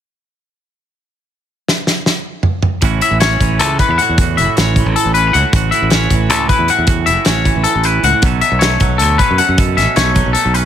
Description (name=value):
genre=math rock and midwest emo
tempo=311 BPM (eighths)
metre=7/8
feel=straight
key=A major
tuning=A4 = 440 Hz
part: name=loose indie drum kit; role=drums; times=1.7-10.6 s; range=hi-hat, kick drum, snare drum, toms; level=-16 LUFS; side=equal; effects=none
part: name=twangy electric guitar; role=accompaniment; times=2.8-10.7 s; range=F#2 to A4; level=-19 LUFS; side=right 12 dB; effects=lush chorus
part: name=modern bright fingered electric bass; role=bass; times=2.8-10.7 s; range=F#1 to F#2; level=-16 LUFS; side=equal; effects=none
part: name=twangy electric guitar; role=arpeggios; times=3.0-10.7 s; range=A4 to F#5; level=-15 LUFS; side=left 7 dB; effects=none
room=little or no reverb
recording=none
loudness=-11 LUFS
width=side -9 dB against mid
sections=1.5-2.8 A section; 2.8-10.7 B section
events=drum fill 1.7-2.8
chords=1.5 N.C.; 2.8 A69; 8.2 B7sus2